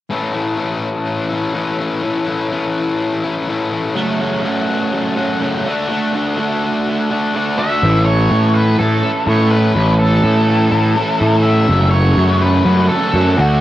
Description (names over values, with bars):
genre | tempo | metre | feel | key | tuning
rock | 124 BPM | 4/4 | straight | A major | A4 = 440 Hz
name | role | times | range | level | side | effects
fuzz guitar | riff | 0.1-13.6 s | F#2 to F#4 | -19 LUFS | left 3 dB | distortion, cassette tape
fuzz guitar | riff | 4.0-13.6 s | E3 to F#4 | -20 LUFS | right 4 dB | distortion, wide subtle chorus, cassette tape, analog delay
octave-fuzz lead guitar | melody | 7.6-13.6 s | F#4 to E5 | -18 LUFS | equal | distortion, cassette tape, analog delay
fuzz picked electric bass | bass | 7.8-13.6 s | F#1 to A2 | -13 LUFS | equal | overdrive
room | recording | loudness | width
little or no reverb | home recording on cassette | -13 LUFS | side -14 dB against mid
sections
0.1-7.8 A section; 7.8-13.6 B section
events
none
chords
0.1 A; 4.0 F#m; 5.7 D; 7.8 A; 11.7 F#m